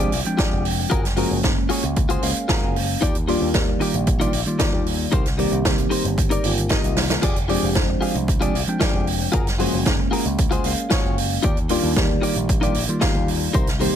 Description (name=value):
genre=nu-disco, nu disco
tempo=114 BPM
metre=4/4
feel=straight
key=unclear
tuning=A4 = 440 Hz
part: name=tine electric piano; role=accompaniment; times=0.0-14.0 s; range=Eb3 to G5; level=-24 LUFS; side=equal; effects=phaser, sidechain pumping, ping-pong delay
part: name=direct-recorded clean electric guitar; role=riff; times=0.0-14.0 s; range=Eb4 to F5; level=-27 LUFS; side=left 4 dB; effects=analog chorus, vintage 12-bit sampler grit, ping-pong delay
part: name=picked electric bass with an envelope filter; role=bass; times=0.0-13.9 s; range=F1 to Eb2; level=-26 LUFS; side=equal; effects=sidechain pumping
part: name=open jazz drum kit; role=drums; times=0.1-13.9 s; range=crash cymbal, hi-hat, snare drum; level=-25 LUFS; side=right 3 dB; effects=none
part: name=electronic kick drum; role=drums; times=0.4-13.7 s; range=none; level=-22 LUFS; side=equal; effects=none
room=studio reverb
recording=none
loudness=-18 LUFS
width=side -9 dB against mid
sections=0.0-14.0 A section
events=drum fill 7.0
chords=0.0 Fm69; 0.9 Gbmaj9; 3.0 Ebmaj9; 5.1 Cm7; 7.2 Fm69; 9.3 Gbmaj9; 11.4 Ebmaj9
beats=0.39 | 0.91 1.44 1.97 2.49 | 3.02 3.54 4.07 4.60 | 5.12 5.65 6.18 6.70 | 7.23 7.75 8.28 8.81 | 9.33 9.86 10.39 10.91 | 11.44 11.96 12.49 13.02 | 13.54